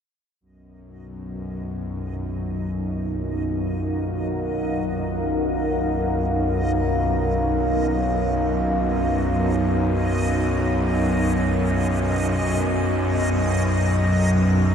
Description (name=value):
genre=dark ambient drone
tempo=free time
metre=none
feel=none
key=unclear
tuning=A4 = 440 Hz
part: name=deep dark ambient pad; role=sustained chords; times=2.5-14.7 s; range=D#4 to G#5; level=-26 LUFS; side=equal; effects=chorus, built-in reverb
part: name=bowed-like drone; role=drone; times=1.0-14.7 s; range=B1 to F#2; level=-22 LUFS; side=equal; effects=built-in reverb
part: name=backwards swelling texture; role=texture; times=1.5-14.7 s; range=D#5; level=-32 LUFS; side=equal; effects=built-in reverb
room=wet cathedral reverb, RT60 7.1 s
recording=none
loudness=-20 LUFS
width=side -7 dB against mid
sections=0.4-14.7 A section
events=fade-in on synth texture 0.4-14.7; fade-out on ambient pad 0.4-14.7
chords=0.4 D#m